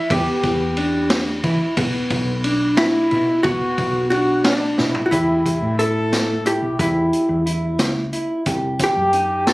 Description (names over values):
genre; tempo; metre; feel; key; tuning
progressive instrumental, band music in an uneven meter; 179 BPM (eighths); 5/8; straight; E harmonic minor from 5.1 s; A4 = 440 Hz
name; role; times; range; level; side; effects
vintage hollow-body jazz guitar; melody; 0.0-9.5 s; D4 to E5; -20 LUFS; equal; none
warm flugelhorn; second line; 0.0-9.5 s; D4 to A4; -24 LUFS; left 1 dB; none
mellow electric guitar; arpeggios; 0.0-9.5 s; B3 to G4; -24 LUFS; equal; spring reverb
woody fretless electric bass; bass; 0.1-9.5 s; B1 to E3; -24 LUFS; equal; wide subtle chorus
street-band drum kit; drums; 0.1-9.5 s; hi-hat, kick drum, ride cymbal, snare drum, toms; -23 LUFS; equal; none
room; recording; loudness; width
light reverb; recorded on a phone in the room, studio ambience, compression; -17 LUFS; side -20 dB against mid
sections
0.0-5.1 A section; 5.1-9.5 B section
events
drum fill 4.8-5.1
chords
0.0 Em; 1.8 Bm; 5.1 Em; 8.5 Cm